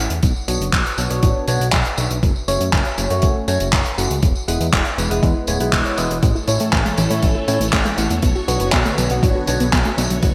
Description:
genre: italo disco.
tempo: 120 BPM.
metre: 4/4.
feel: straight.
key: unclear.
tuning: A4 = 440 Hz.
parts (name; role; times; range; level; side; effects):
barky tine electric piano; stabs; 0.0-10.2 s; G#3 to F#5; -26 LUFS; equal; overdrive, phaser, delay.
fat analog bass; bass; 0.0-10.3 s; D1 to A2; -24 LUFS; equal; none.
damped 70s drum kit; drums; 0.1-10.3 s; handclaps, hi-hat, tambourine; -24 LUFS; equal; small room ambience, gated reverb.
electronic kick drum; drums; 0.2-10.3 s; none; -21 LUFS; equal; overdrive, small room ambience.
phased string machine; sustained chords; 6.2-10.3 s; D3 to C#5; -29 LUFS; equal; ensemble chorus, phaser.
soft round pluck; arpeggios; 6.2-10.3 s; E3 to B4; -26 LUFS; equal; chorus, delay.
riser; sound effects; 10.2-10.3 s; none; barely audible; none; none.
room: moderate lush hall reverb, RT60 1.8 s, small room ambience.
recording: bright 1980s-style digital production.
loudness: -18 LUFS.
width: mono.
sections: 0.0-10.3 A section.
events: none.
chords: 0.2 Bmadd9; 2.2 F#m; 4.2 E; 6.2 A; 8.2 Bmadd9.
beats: | 0.23 0.73 1.23 1.73 | 2.23 2.73 3.23 3.73 | 4.23 4.73 5.23 5.73 | 6.23 6.73 7.23 7.73 | 8.23 8.73 9.23 9.73 | 10.23.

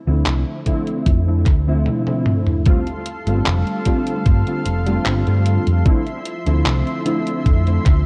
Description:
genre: vaporwave.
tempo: 75 BPM.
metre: 4/4.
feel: straight.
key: unclear.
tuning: A4 = 438 Hz.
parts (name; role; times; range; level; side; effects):
warbly lo-fi synth keys; accompaniment; 0.1-7.9 s; D3 to F4; -24 LUFS; equal; ensemble chorus, tape echo.
fingered electric bass; bass; 0.1-8.0 s; F1 to G2; -20 LUFS; equal; tube saturation.
detuned 8-bit digital drum machine; drums; 0.3-8.0 s; handclaps, hi-hat, toms; -26 LUFS; equal; none.
electronic kick drum; drums; 0.7-8.0 s; none; -18 LUFS; equal; none.
lush unison pad; sustained chords; 2.7-8.1 s; F3 to C6; -31 LUFS; equal; chorus.
room: light reverb, digital ambience.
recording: echo-heavy mix, cassette tape.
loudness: -18 LUFS.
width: mono.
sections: 0.0-2.7 A section; 2.7-8.1 B section.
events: break 1.9-2.7; drum fill 1.9-2.7.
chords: 0.0 Dm9; 2.7 G9sus4; 5.9 Dm9.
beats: 0.26 1.06 1.86 | 2.66 3.46 4.26 5.06 | 5.86 6.66 7.46.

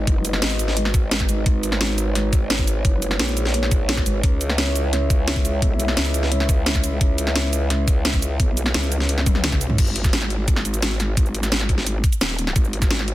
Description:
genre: dark technical drum and bass.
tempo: 173 BPM.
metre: 4/4.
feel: straight.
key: G# minor.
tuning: A4 = 441 Hz.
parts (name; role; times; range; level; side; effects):
dark analog pad; sustained chords; 0.0-9.7 s; G#3 to E5; -28 LUFS; equal; chorus, sidechain pumping.
growl bass; bass; 0.0-13.1 s; D#1 to C#2; -22 LUFS; equal; chorus, overdrive.
drum and bass drum kit; drums; 0.1-13.1 s; crash cymbal, hi-hat, shaker, snare drum, toms; -23 LUFS; equal; studio reverb.
electronic kick drum; drums; 0.1-12.9 s; none; -19 LUFS; equal; studio reverb.
room: little or no reverb.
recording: dense, heavily limited modern master.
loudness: -18 LUFS.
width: side -15 dB against mid.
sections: 0.0-9.8 A section; 9.8-13.1 A section.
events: drop 0.0-9.8, 9.8-13.1; drum fill 9.3-9.8.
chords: 0.0 G#m; 4.2 C#m; 9.8 G#5.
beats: | 0.07 0.42 0.77 1.11 | 1.46 1.81 2.15 2.50 | 2.85 3.19 3.54 3.89 | 4.24 4.58 4.93 5.28 | 5.62 5.97 6.32 6.66 | 7.01 7.36 7.70 8.05 | 8.40 8.74 9.09 9.44 | 9.78 10.13 10.48 10.82 | 11.17 11.52 11.87 12.21 | 12.56 12.91.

